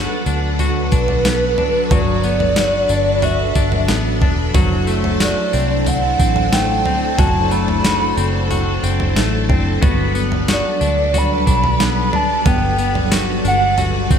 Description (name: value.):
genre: dream pop.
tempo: 91 BPM.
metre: 4/4.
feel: straight.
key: unclear.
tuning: A4 = 435 Hz.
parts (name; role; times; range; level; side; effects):
string machine, violins; sustained chords; 0.0-14.2 s; F#3 to C5; -22 LUFS; equal; ensemble chorus.
semi-hollow electric guitar; arpeggios; 0.0-14.2 s; F#3 to F#4; -22 LUFS; left 4 dB; wide subtle chorus, ping-pong delay.
vintage muted fingered electric bass; bass; 0.0-14.2 s; E1 to D2; -20 LUFS; equal; none.
crisp 8-bit digital drum machine; drums; 0.3-14.2 s; kick drum, snare drum, tambourine, toms; -19 LUFS; right 1 dB; overdrive, gated reverb.
hollow clarinet-like synth lead; melody; 0.6-14.1 s; B4 to B5; -19 LUFS; right 1 dB; chorus, ping-pong delay.
room: moderate lush hall reverb, RT60 1.6 s, digital ambience.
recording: bright 1980s-style digital production.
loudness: -14 LUFS.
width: side -8 dB against mid.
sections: 0.0-14.2 A section.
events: none.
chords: 0.0 Gmaj7; 4.5 D7/F#; 9.8 Gmaj7.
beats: 0.59 1.25 | 1.91 2.57 3.23 3.89 | 4.54 5.21 5.86 6.52 | 7.18 7.84 8.50 9.16 | 9.82 10.48 11.14 11.80 | 12.46 13.12 13.78.